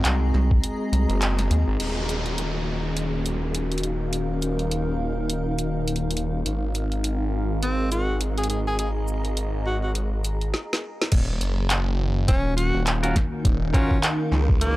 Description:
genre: glitch hop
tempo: 103 BPM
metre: 4/4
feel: swing 58% on 16ths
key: Eb dorian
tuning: A4 = 439 Hz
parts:
  - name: warbly tape-like pad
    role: sustained chords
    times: 0.0-14.8 s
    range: Eb3 to Gb4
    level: -30 LUFS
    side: left 1 dB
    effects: chorus, built-in reverb, vintage 12-bit sampler grit, sidechain pumping
  - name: phased detuned saw bass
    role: bass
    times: 0.0-14.8 s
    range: Eb1 to Db2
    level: -26 LUFS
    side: equal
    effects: phaser
  - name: drum and bass drum kit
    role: drums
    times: 0.0-14.7 s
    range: crash cymbal, handclaps, hi-hat, shaker, snare drum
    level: -28 LUFS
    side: equal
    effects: none
  - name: granular cloud pad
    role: texture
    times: 0.0-14.8 s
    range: Eb4 to Bb5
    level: -33 LUFS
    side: right 1 dB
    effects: built-in reverb, sidechain pumping
  - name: rubbery square bass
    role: bass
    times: 0.1-1.6, 12.3-12.7 s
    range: Eb1 to Eb2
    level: -21 LUFS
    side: equal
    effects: none
  - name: electronic kick drum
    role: drums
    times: 0.5-0.6, 11.1-14.6 s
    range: none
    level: -21 LUFS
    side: equal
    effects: none
  - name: downlifter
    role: sound effects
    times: 1.8-6.5 s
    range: none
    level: -34 LUFS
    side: equal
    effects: none
  - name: breathy tenor saxophone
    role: melody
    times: 7.6-14.8 s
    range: Bb3 to Ab4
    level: -28 LUFS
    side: equal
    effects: analog delay
  - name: semi-hollow electric guitar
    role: stabs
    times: 13.0-14.0 s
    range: Db4 to Bb4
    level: -30 LUFS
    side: equal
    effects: sidechain pumping, analog delay
room: little or no reverb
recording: dry, gritty hardware recording, transformer saturation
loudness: -22 LUFS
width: side -17 dB against mid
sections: 0.0-1.8 A section; 1.8-11.1 B section; 11.1-14.8 C section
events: break 0.6-1.8; band accent 1.2; drum fill 10.5-11.1; drop 11.1-14.8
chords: 0.0 Ab7; 1.8 Ebm7; 6.5 Ab7; 11.1 Ebm7

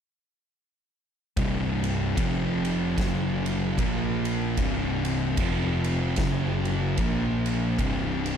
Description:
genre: stoner and doom metal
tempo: 75 BPM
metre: 4/4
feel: swing 59% on 8ths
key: unclear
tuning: A4 = 440 Hz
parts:
  - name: thick fuzz guitar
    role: riff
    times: 1.4-8.4 s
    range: C2 to Bb3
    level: -29 LUFS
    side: left 10 dB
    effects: distortion
  - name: thick fuzz guitar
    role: riff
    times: 1.4-8.4 s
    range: C2 to Bb3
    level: -28 LUFS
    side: right 8 dB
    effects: distortion
  - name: fuzz picked electric bass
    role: bass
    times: 1.4-8.4 s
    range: C1 to Bb1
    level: -32 LUFS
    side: equal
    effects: overdrive
  - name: oversized low-tuned drum kit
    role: drums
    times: 1.4-8.4 s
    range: kick drum, ride cymbal, snare drum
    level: -31 LUFS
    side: equal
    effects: none
room: light reverb, studio ambience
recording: dark, warm production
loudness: -24 LUFS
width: side -8 dB against mid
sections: 1.4-8.4 A section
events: none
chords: 1.4 C5; 2.2 F5; 3.0 F#5; 3.8 Bb5; 4.6 C5; 5.4 F5; 6.2 F#5; 7.0 Bb5; 7.8 C5

